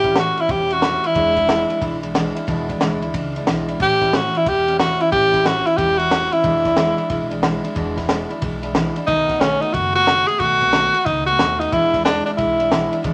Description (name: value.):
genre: rockabilly.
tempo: 182 BPM.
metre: 4/4.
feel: swing 64% on 8ths.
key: E mixolydian.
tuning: A4 = 441 Hz.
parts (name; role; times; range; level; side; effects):
bright tenor saxophone; melody; 0.0-13.0 s; C#4 to G#4; -19 LUFS; equal; none.
picked steel-string acoustic guitar; accompaniment; 0.0-13.1 s; E2 to F#4; -26 LUFS; equal; none.
upright bass; bass; 0.0-13.1 s; E1 to E2; -33 LUFS; equal; none.
compact cocktail drum kit; drums; 0.0-13.1 s; kick drum, ride cymbal, snare drum; -26 LUFS; equal; none.
room: moderate club reverb, RT60 0.7 s.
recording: none.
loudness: -18 LUFS.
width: mono.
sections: 0.0-13.1 A section.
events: none.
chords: 0.0 A7; 1.2 E7; 3.8 A7; 6.4 E7; 9.1 B7; 11.7 E7.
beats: 0.17 0.50 0.83 | 1.16 1.49 1.82 2.15 | 2.48 2.81 3.14 3.47 | 3.80 4.13 4.46 4.79 | 5.12 5.45 5.78 6.11 | 6.44 6.77 7.10 7.43 | 7.76 8.09 8.42 8.75 | 9.08 9.41 9.74 10.07 | 10.40 10.73 11.06 11.39 | 11.72 12.05 12.38 12.71 | 13.04.